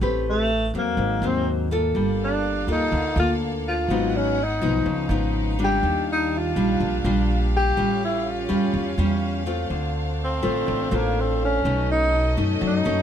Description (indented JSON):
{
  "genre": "bossa nova",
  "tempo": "124 BPM",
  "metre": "4/4",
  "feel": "straight",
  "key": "unclear",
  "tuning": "A4 = 443 Hz",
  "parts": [
    { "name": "nylon-string guitar", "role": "accompaniment", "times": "0.0-13.0 s", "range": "Ab2 to B4", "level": "-24 LUFS", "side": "left 2 dB", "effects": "none" },
    { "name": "upright bass", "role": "bass", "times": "0.0-13.0 s", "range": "G1 to F#2", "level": "-26 LUFS", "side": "right 1 dB", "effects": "none" },
    { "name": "mellow tenor saxophone", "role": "melody", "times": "0.3-13.0 s", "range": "A3 to G4", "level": "-24 LUFS", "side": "equal", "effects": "none" },
    { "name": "warm studio violin section", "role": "sustained chords", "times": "1.9-13.0 s", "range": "Bb3 to Gb5", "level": "-33 LUFS", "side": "left 1 dB", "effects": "none" }
  ],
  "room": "little or no reverb",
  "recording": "close, detailed microphones",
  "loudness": "-20 LUFS",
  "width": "side -9 dB against mid",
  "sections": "0.0-13.0 A section",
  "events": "tenor saxophone solo 0.0-13.0",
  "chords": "0.0 Am9; 1.0 Ab9; 2.0 Gm9; 3.9 Abm7; 4.9 Db9; 5.8 Ebmaj9; 7.8 A7b13; 9.7 Dm7; 11.7 B9",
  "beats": "| 0.01 0.50 0.98 1.47 | 1.96 2.44 2.92 3.41 | 3.90 4.38 4.87 5.35 | 5.83 6.32 6.80 7.29 | 7.77 8.26 8.74 9.23 | 9.71 10.20 10.68 11.16 | 11.65 12.13 12.62"
}